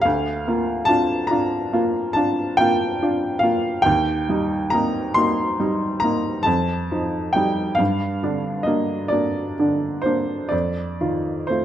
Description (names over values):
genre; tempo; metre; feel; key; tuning
classical, romantic nocturne for solo piano; 39-49 BPM (dotted quarters); 9/8; rubato; Bb major; A4 = 440 Hz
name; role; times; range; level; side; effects
clear upright piano; solo; 0.0-11.6 s; D2 to C6; -19 LUFS; equal; none
room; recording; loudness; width
moderate recital hall reverb, RT60 1.3 s; close, detailed microphones; -19 LUFS; side -11 dB against mid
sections
0.0-11.6 A section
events
none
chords
0.0 Bb/D; 3.9 Eb; 6.5 F9; 7.8 Gm; 10.5 F7